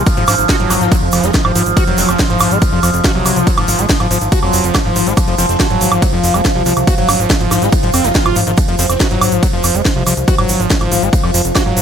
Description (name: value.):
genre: psychedelic trance.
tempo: 141 BPM.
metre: 4/4.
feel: straight.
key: F phrygian.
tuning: A4 = 440 Hz.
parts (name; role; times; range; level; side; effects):
overtone-sweeping drone; sustained chords; 0.0-11.8 s; F3; -18 LUFS; right 2 dB; chorus, built-in reverb, phaser, sidechain pumping.
screaming distorted acid line; riff; 0.0-11.8 s; Eb3 to Gb4; -18 LUFS; moving between left 4 dB and right 2 dB; distortion, chorus, auto-pan, sidechain pumping, ping-pong delay.
fat analog bass; bass; 0.0-11.8 s; F1 to C2; -18 LUFS; equal; none.
electronic kick drum; drums; 0.1-11.6 s; none; -15 LUFS; equal; overdrive.
techno drum kit; drums; 0.1-11.8 s; hi-hat, ride cymbal, snare drum, woodblock; -18 LUFS; right 2 dB; overdrive.
egg shaker; percussion; 0.1-11.8 s; none; -23 LUFS; right 4 dB; none.
metallic wobble bass; second line; 0.7-2.4, 5.4-9.2 s; C4 to Eb4; -28 LUFS; left 2 dB; wide subtle chorus, sidechain pumping, high-pass filter, digital delay.
swell; sound effects; 7.9-8.6 s; none; -24 LUFS; right 2 dB; none.
room: little or no reverb.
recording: none.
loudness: -11 LUFS.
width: side -8 dB against mid.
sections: 0.0-11.8 A section.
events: swell 7.9-8.6.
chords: 0.0 F5.